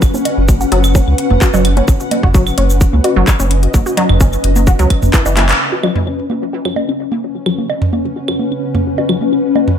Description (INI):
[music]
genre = minimal techno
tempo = 129 BPM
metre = 4/4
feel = straight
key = unclear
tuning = A4 = 440 Hz
[part]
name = saturated sub bass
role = bass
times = 0.0-5.5 s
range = F#1 to C#2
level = -14 LUFS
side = equal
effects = sidechain pumping
[part]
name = electronic kick drum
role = drums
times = 0.0-5.2 s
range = none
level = -11 LUFS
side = equal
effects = studio reverb
[part]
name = garage drum kit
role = drums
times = 0.0-5.6 s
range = handclaps, hi-hat, shaker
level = -20 LUFS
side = equal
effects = low-pass filter on perc, studio reverb, low-pass filter on hats, low-pass filter on snare
[part]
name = electronic claves, congas, bongos and toms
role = percussion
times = 0.0-9.8 s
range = none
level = -19 LUFS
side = right 2 dB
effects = studio reverb, ping-pong delay
[part]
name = granular cloud pad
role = texture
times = 0.0-9.8 s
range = C#4 to F#5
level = -18 LUFS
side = left 3 dB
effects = built-in reverb, wide subtle chorus, sidechain pumping
[part]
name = resonant blip pluck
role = riff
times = 0.1-9.4 s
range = E3 to F#4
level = -19 LUFS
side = left 1 dB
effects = chorus, sidechain pumping, ping-pong delay
[sound]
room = light reverb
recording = none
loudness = -11 LUFS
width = side -8 dB against mid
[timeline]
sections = 0.0-5.6 A section; 5.6-9.8 B section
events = filter sweep on synth pluck 0.0-5.6; drum fill 5.4; band accent 5.5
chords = 0.0 F#sus4